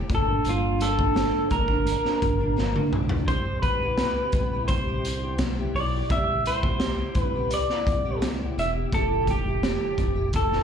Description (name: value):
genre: indie pop, bedroom pop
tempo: 85 BPM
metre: 4/4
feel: straight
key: C major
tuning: A4 = 442 Hz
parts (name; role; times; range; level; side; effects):
- picked steel-string acoustic guitar; accompaniment; 0.0-10.6 s; G2 to G4; -31 LUFS; left 1 dB; ensemble chorus, warbly pitch drift, slapback echo
- round analog bass; bass; 0.0-10.6 s; E1 to C2; -29 LUFS; equal; none
- electric guitar through a small old amp; melody; 0.1-10.6 s; F4 to E5; -26 LUFS; equal; wide subtle chorus, slapback echo, tape echo
- raw garage drum kit; drums; 0.1-10.6 s; hi-hat, kick drum, snare drum, toms; -27 LUFS; equal; none
room: light reverb, small room ambience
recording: live gig heard through the venue's PA, club reverb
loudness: -22 LUFS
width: side -7 dB against mid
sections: 0.0-10.6 A section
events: drum fill 2.6-3.3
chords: 0.1 Gm7; 3.3 Cmaj7; 8.9 Fmaj9